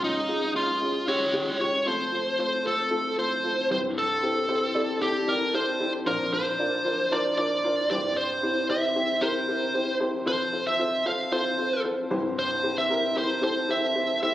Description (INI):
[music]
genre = pop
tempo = 114 BPM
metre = 4/4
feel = straight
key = F major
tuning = A4 = 440 Hz
[part]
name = smooth overdriven lead guitar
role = melody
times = 0.0-14.3 s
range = Eb4 to F5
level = -25 LUFS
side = right 1 dB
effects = tape echo
[part]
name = dark upright piano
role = accompaniment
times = 0.0-14.3 s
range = Bb1 to D5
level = -28 LUFS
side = left 1 dB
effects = none
[sound]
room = light reverb, small room ambience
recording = recorded on a phone in the room, club reverb, compression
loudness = -23 LUFS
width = side -14 dB against mid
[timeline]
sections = 0.0-1.9 A section; 1.9-14.3 B section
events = none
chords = 0.0 Db; 1.9 F; 3.7 C; 6.1 Bbadd9; 7.9 C; 10.3 F; 12.1 C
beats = 0.28 0.81 1.33 | 1.86 2.38 2.91 3.44 | 3.96 4.49 5.01 5.54 | 6.06 6.59 7.11 7.64 | 8.16 8.69 9.21 9.74 | 10.27 10.79 11.32 11.84 | 12.37 12.90 13.42 13.95